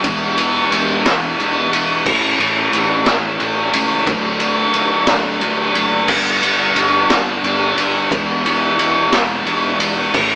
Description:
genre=quiet-loud alternative rock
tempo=59 BPM (dotted quarters)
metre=6/8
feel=straight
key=unclear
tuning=A4 = 439 Hz
part: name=thick fuzz guitar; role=riff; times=0.0-10.4 s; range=G2 to E4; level=-20 LUFS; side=equal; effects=distortion
part: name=overdriven fingered electric bass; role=bass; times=0.0-10.4 s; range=E1 to D2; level=-31 LUFS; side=equal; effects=none
part: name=raw garage drum kit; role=drums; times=0.0-10.3 s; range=crash cymbal, kick drum, ride cymbal, snare drum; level=-14 LUFS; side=equal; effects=none
room=light reverb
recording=band playing live in one room, AM radio sound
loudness=-13 LUFS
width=side -31 dB against mid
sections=0.0-10.4 A section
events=none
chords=0.0 E; 2.1 A; 4.1 D; 6.1 G; 8.1 E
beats=| 0.04 1.05 | 2.06 3.07 | 4.08 5.09 | 6.10 7.11 | 8.12 9.13 | 10.14

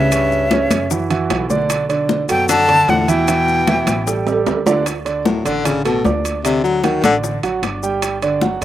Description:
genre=Afro-Cuban jazz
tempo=152 BPM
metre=4/4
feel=straight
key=D major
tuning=A4 = 440 Hz
part: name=breathy bright jazz flute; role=melody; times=0.0-4.3 s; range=E5 to A5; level=-17 LUFS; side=left 1 dB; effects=slapback echo
part: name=breathy baritone saxophone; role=second line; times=0.0-7.2 s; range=G2 to F#3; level=-19 LUFS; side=left 5 dB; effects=none
part: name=warm grand piano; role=accompaniment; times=0.0-8.6 s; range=C#3 to D6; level=-19 LUFS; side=right 4 dB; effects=slapback echo
part: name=upright bass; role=bass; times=0.0-8.6 s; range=G1 to F#2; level=-26 LUFS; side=equal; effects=none
part: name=bongos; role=percussion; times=0.1-8.6 s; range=none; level=-28 LUFS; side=left 9 dB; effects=slapback echo
part: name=congas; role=percussion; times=0.1-8.6 s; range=none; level=-22 LUFS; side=left 3 dB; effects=none
part: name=maracas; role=percussion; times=0.1-8.6 s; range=none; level=-29 LUFS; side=left 8 dB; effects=none
part: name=timbales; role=percussion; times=0.1-8.6 s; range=none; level=-24 LUFS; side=right 6 dB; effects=slapback echo
room=little or no reverb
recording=recorded outdoors, with no room sound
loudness=-14 LUFS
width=side -12 dB against mid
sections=0.0-4.9 A section; 4.9-8.6 B section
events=drum fill 4.3-4.9; baritone saxophone solo 4.9-8.6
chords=0.1 C#dim; 0.9 Bmadd11; 1.7 Bm7; 3.3 Em; 4.1 A7sus4; 4.9 D; 8.0 G5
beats=| 0.12 0.51 0.91 1.30 | 1.70 2.10 2.49 2.88 | 3.28 3.68 4.07 4.47 | 4.86 5.26 5.65 6.05 | 6.45 6.84 7.24 7.63 | 8.03 8.42

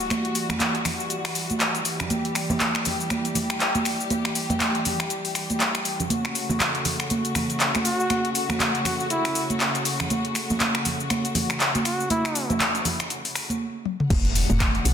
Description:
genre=afro house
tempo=120 BPM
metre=4/4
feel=swing 58% on 16ths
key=E dorian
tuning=A4 = 438 Hz
part: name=dark studio string section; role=sustained chords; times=0.0-14.9 s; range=C#3 to F#5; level=-30 LUFS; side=left 1 dB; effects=sidechain pumping
part: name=afro-pop drum kit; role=drums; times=0.0-14.9 s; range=crash cymbal, finger snaps, handclaps, hi-hat, shaker, toms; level=-25 LUFS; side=left 1 dB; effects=soft clipping on snare
part: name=sub drop and impact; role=sound effects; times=0.0-0.1, 14.1-14.9 s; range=none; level=-29 LUFS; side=equal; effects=none
part: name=congas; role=percussion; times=0.1-14.9 s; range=none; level=-28 LUFS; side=right 2 dB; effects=none
part: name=trumpet with bucket mute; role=melody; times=7.9-12.5 s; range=E4 to F#4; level=-28 LUFS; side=right 1 dB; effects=digital delay
part: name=woody FM bass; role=bass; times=14.1-14.9 s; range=E1 to B1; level=-24 LUFS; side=equal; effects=sidechain pumping
part: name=electronic kick drum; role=drums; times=14.1-14.7 s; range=none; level=-23 LUFS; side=equal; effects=none
room=moderate recital hall reverb, RT60 1.5 s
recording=dense, heavily limited modern master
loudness=-22 LUFS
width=side -8 dB against mid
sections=0.0-14.1 A section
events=drum fill 13.9; impact 14.1-14.9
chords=0.0 Emadd9; 6.1 A6; 14.1 Emadd9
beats=| 0.10 0.60 1.10 1.60 | 2.10 2.60 3.10 3.60 | 4.10 4.60 5.10 5.60 | 6.10 6.60 7.10 7.60 | 8.10 8.60 9.10 9.60 | 10.10 10.60 11.10 11.60 | 12.10 12.60 13.10 13.60 | 14.10 14.60

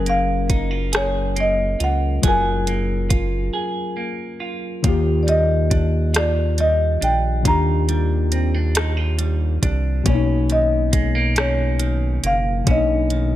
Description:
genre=slow six-eight R&B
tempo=46 BPM (dotted quarters)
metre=6/8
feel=straight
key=unclear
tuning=A4 = 442 Hz
part: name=semi-hollow electric guitar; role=second line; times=0.0-13.4 s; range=B2 to Ab4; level=-28 LUFS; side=right 4 dB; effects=none
part: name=tine electric piano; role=accompaniment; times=0.0-13.4 s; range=B2 to C#5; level=-24 LUFS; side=left 5 dB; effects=auto-pan
part: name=round analog bass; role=bass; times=0.0-13.4 s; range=Gb1 to Eb2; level=-21 LUFS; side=equal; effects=none
part: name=marimba with medium mallets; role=melody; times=0.1-13.4 s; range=Db5 to Bb5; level=-22 LUFS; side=equal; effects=slapback echo
part: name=smooth R&B drum kit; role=drums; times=0.1-13.3 s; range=hi-hat, kick drum, rim click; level=-21 LUFS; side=equal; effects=none
room=light reverb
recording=none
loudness=-17 LUFS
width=side -13 dB against mid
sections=0.0-13.4 A section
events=break 3.5-4.8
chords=0.0 Gbmaj9; 4.8 Ebmaj9; 10.1 Bmaj9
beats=0.93 | 2.23 3.54 | 4.84 6.15 | 7.45 8.76 | 10.06 11.36 | 12.67

